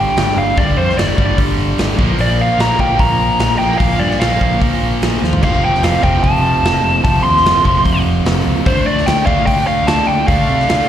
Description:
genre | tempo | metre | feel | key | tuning
hard rock | 148 BPM | 4/4 | straight | unclear | A4 = 440 Hz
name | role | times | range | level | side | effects
biting lead guitar | melody | 0.0-10.9 s | C5 to C6 | -16 LUFS | equal | overdrive, slapback echo
cranked stack guitar | riff | 0.0-10.9 s | F2 to D4 | -21 LUFS | right 11 dB | overdrive, spring reverb, slapback echo
heavy high-gain guitar | riff | 0.0-10.9 s | F2 to D4 | -22 LUFS | left 12 dB | distortion, slapback echo
picked electric bass | bass | 0.0-10.8 s | F1 to C3 | -18 LUFS | equal | none
big rock drum kit | drums | 0.2-10.8 s | crash cymbal, hi-hat, kick drum, snare drum, toms | -18 LUFS | equal | none
room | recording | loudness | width
light reverb | live gig heard through the venue's PA, recital hall reverb | -12 LUFS | side -10 dB against mid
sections
0.0-10.9 A section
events
drum fill 5.2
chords
0.0 G5; 2.0 Bb5; 5.4 F; 8.7 Dm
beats
0.17 | 0.57 0.97 1.38 1.78 | 2.19 2.59 3.00 3.40 | 3.81 4.21 4.62 5.02 | 5.43 5.83 6.24 6.64 | 7.04 7.45 7.86 8.26 | 8.66 9.07 9.47 9.88 | 10.29 10.69

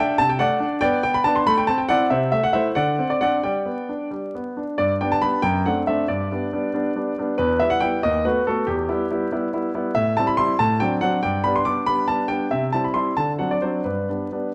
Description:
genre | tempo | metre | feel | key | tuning
classical-period piano sonatina | 93 BPM (dotted quarters) | 6/8 | straight | G major | A4 = 440 Hz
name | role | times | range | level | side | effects
clear grand piano | solo | 0.0-14.5 s | D#2 to D6 | -22 LUFS | equal | none
room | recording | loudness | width
moderate recital hall reverb, RT60 1.3 s | vinyl crackle | -22 LUFS | mono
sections
0.0-4.8 A section; 4.8-14.5 B section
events
none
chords
0.0 D7/C; 0.8 Am11/B; 1.5 Am; 2.1 Am/C; 2.8 D7; 3.4 G; 5.4 D7/F#; 6.1 G; 7.4 Em; 8.0 B7/D#; 8.7 Em; 10.0 Am7; 10.6 D7/A; 11.2 G; 12.5 C; 13.2 D7; 13.9 G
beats
0.19 | 0.83 1.47 | 2.12 2.77 | 3.44 4.12 | 4.79 5.44 | 6.09 6.74 | 7.38 8.03 | 8.67 9.31 | 9.95 10.59 | 11.23 11.87 | 12.52 13.18 | 13.86 14.54

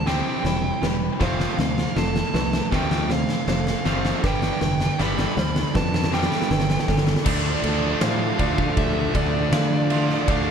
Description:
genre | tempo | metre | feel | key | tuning
post-rock | 79 BPM | 4/4 | straight | D dorian | A4 = 442 Hz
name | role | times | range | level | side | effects
nasal lead guitar with a parked wah | melody | 0.0-10.5 s | D5 to B5 | -30 LUFS | right 4 dB | overdrive, analog delay
clear studio string section | sustained chords | 0.0-10.5 s | B2 to D5 | -38 LUFS | left 1 dB | none
felt-muted upright piano | arpeggios | 0.0-10.5 s | A4 to F5 | -34 LUFS | right 4 dB | analog delay
semi-hollow electric guitar | arpeggios | 0.0-10.5 s | D3 to A4 | -33 LUFS | left 4 dB | phaser, analog delay
distorted electric guitar | riff | 0.0-10.5 s | F2 to D4 | -28 LUFS | left 11 dB | overdrive
distorted electric guitar | riff | 0.0-10.5 s | G2 to D4 | -28 LUFS | right 11 dB | overdrive
growling fingered electric bass | bass | 0.0-10.5 s | E1 to D3 | -26 LUFS | equal | overdrive
oversized low-tuned drum kit | drums | 0.1-10.5 s | crash cymbal, kick drum, ride cymbal, snare drum | -24 LUFS | equal | none
room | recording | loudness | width
little or no reverb | dark, warm production | -20 LUFS | side -7 dB against mid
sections
0.0-7.3 A section; 7.3-10.5 B section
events
build-up 0.0-7.3; drum fill 0.0-7.3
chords
0.0 Cadd9; 1.2 F; 4.2 Gadd9; 7.3 Dm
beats
0.45 | 1.21 1.96 2.72 3.48 | 4.24 4.99 5.75 6.50 | 7.26 8.02 8.77 9.53 | 10.28

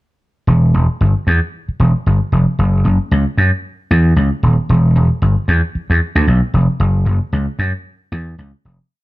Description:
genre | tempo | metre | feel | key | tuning
funk | 114 BPM | 4/4 | swing 56% on 16ths | unclear | A4 = 441 Hz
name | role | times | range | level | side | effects
vintage slap bass | solo | 0.5-8.8 s | D#1 to F#2 | -12 LUFS | equal | none
room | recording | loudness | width
light reverb | none | -12 LUFS | side -19 dB against mid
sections
0.5-8.9 breakdown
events
fade-out 6.8-8.9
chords
none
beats
| 0.47 1.00 1.52 2.05 | 2.58 3.11 3.63 4.16 | 4.69 5.21 5.74 6.27 | 6.80 7.32 7.85 8.38

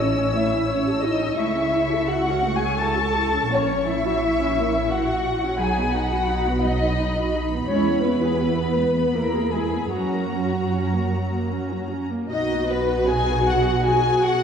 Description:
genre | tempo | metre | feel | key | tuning
classical, slow romantic movement for string orchestra | 74-89 BPM | 3/4 | rubato | B major from 3.5 s | A4 = 441 Hz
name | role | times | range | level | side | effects
warm symphonic violin section | melody | 0.0-14.4 s | B4 to E6 | -29 LUFS | left 4 dB | none
dark chamber violin section | second line | 0.0-14.4 s | B3 to A5 | -25 LUFS | left 3 dB | none
warm symphonic viola section | accompaniment | 0.0-14.4 s | F#3 to A4 | -26 LUFS | right 2 dB | none
warm chamber cello section | bass | 0.0-14.4 s | B2 to A4 | -27 LUFS | right 1 dB | none
warm symphonic double bass section | bass | 0.0-14.4 s | A1 to F#2 | -27 LUFS | right 2 dB | none
room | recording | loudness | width
wet scoring stage reverb, RT60 1.8 s | dark, warm production | -20 LUFS | side -7 dB against mid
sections
0.0-12.3 A section; 12.3-14.4 B section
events
none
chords
0.0 A; 1.4 A/C#; 3.5 F#7/A#; 5.6 B; 7.7 E; 9.9 F#; 12.3 B5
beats
0.70 | 1.38 2.09 2.80 | 3.51 4.21 4.91 | 5.59 6.29 6.99 | 7.70 8.42 9.16 | 9.93 10.74 11.52 | 12.31 13.09 13.86

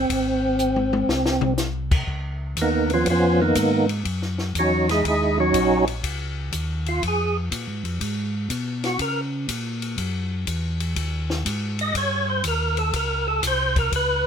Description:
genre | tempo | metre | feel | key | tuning
soul jazz organ trio | 121 BPM | 4/4 | swing 67% on 8ths | unclear | A4 = 439 Hz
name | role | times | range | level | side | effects
percussive tonewheel organ | melody | 0.0-14.3 s | Eb3 to Eb5 | -20 LUFS | right 1 dB | slow rotary speaker, overdrive, chorus vibrato
mellow tonewheel organ | bass | 0.0-14.3 s | Ab1 to Db3 | -26 LUFS | equal | slow rotary speaker
compact cocktail drum kit | drums | 0.1-14.1 s | crash cymbal, hi-hat, kick drum, ride cymbal, snare drum, toms | -28 LUFS | left 3 dB | none
room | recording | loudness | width
light reverb | minimal, uncompressed stereo recording | -20 LUFS | side -7 dB against mid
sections
0.0-2.1 A section; 2.1-14.3 B section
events
drum fill 0.6-1.6; tonewheel organ solo 2.1-14.3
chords
0.1 Ab; 2.1 Db13; 4.1 Gb13; 6.0 Db69; 8.0 Abm; 9.0 Bbm; 10.0 Gbsus2; 12.0 Cm7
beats
| 0.10 0.59 1.09 1.58 | 2.08 2.57 3.06 3.56 | 4.05 4.55 5.04 5.54 | 6.03 6.53 7.02 7.51 | 8.01 8.50 9.00 9.49 | 9.98 10.48 10.97 11.46 | 11.96 12.45 12.94 13.43 | 13.92

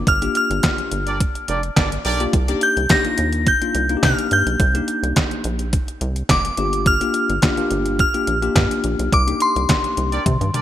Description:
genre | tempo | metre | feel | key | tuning
early-eighties boogie funk | 106 BPM | 4/4 | straight | C minor | A4 = 440 Hz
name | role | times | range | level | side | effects
glassy synth bell | melody | 0.0-10.6 s | C6 to Bb6 | -21 LUFS | left 1 dB | chorus
bell-like tine electric piano | accompaniment | 0.0-10.2 s | Bb3 to G4 | -24 LUFS | left 3 dB | lush chorus
rubbery square bass | bass | 0.0-10.5 s | F1 to C3 | -22 LUFS | equal | none
detuned 8-bit digital drum machine | drums | 0.1-10.6 s | handclaps, hi-hat, kick drum, snare drum, toms | -20 LUFS | equal | overdrive, gated reverb
warm horn section | second line | 1.1-2.2, 10.1-10.6 s | D4 to D5 | -25 LUFS | right 2 dB | ping-pong delay
room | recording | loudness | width
light reverb | bright 1980s-style digital production | -16 LUFS | side -12 dB against mid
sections
0.0-10.6 A section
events
band accent 0.1-2.3, 9.1-10.6; drum fill 10.3-10.6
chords
0.0 Gm7; 2.3 Cm7; 6.6 Gm7; 9.1 Cm9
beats
| 0.07 0.64 1.20 1.77 | 2.33 2.90 3.47 4.03 | 4.60 5.16 5.73 6.30 | 6.86 7.43 7.99 8.56 | 9.13 9.69 10.26

